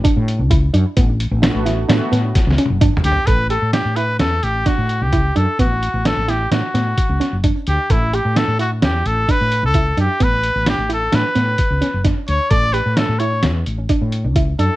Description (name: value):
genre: progressive instrumental, band music in an uneven meter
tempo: 130 BPM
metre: 5/4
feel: straight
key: A mixolydian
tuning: A4 = 443 Hz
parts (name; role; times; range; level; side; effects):
- soft round pluck; arpeggios; 0.0-14.8 s; B3 to A4; -23 LUFS; right 4 dB; chorus, tape echo
- lo-fi sampler-style drum kit; drums; 0.0-14.7 s; hi-hat, kick drum, snare drum, toms; -18 LUFS; equal; none
- woody fretless electric bass; bass; 0.2-14.7 s; F#1 to A2; -19 LUFS; equal; none
- warm analog pad; accompaniment; 1.4-2.1 s; A3 to F#4; -26 LUFS; equal; chorus
- clear trumpet; melody; 3.0-14.8 s; E4 to D5; -19 LUFS; equal; none
room: light reverb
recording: nothing above 10.8 kHz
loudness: -14 LUFS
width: side -17 dB against mid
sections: 0.0-3.3 A section; 3.3-14.8 B section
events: drum fill 2.4-3.3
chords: 0.0 Asus4; 1.0 Bm11; 3.3 A7sus4; 5.6 Gmaj9#11 (rootless); 7.9 A7sus4; 10.2 Bm11; 12.5 A7sus4